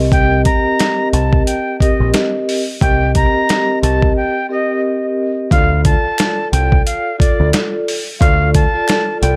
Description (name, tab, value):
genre	hip hop, boom-bap hip-hop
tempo	89 BPM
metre	4/4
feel	swing 58% on 16ths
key	unclear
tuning	A4 = 439 Hz
part	vibraphone with soft mallets	accompaniment	0.0-9.4 s	C4 to Eb5	-21 LUFS	equal	high-pass filter, low-pass filter
part	deep dub picked electric bass	bass	0.0-9.4 s	Bb1 to D2	-18 LUFS	equal	none
part	breathy reedy silver concert flute	melody	0.1-9.4 s	D5 to Bb5	-21 LUFS	equal	high-pass filter, low-pass filter, delay
part	boom bap sampler-style drum kit	drums	0.1-9.4 s	hi-hat, kick drum, snare drum	-18 LUFS	equal	none
part	finger snap	percussion	6.2-9.1 s	none	-31 LUFS	equal	none
room	light reverb, small room ambience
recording	none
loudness	-15 LUFS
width	mono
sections	0.0-5.5 A section; 5.5-9.4 B section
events	break 4.2-5.5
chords	0.0 Cm7; 5.5 Dm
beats	| 0.12 0.79 1.47 2.14 | 2.81 3.49 4.16 4.84 | 5.51 6.19 6.86 7.53 | 8.21 8.88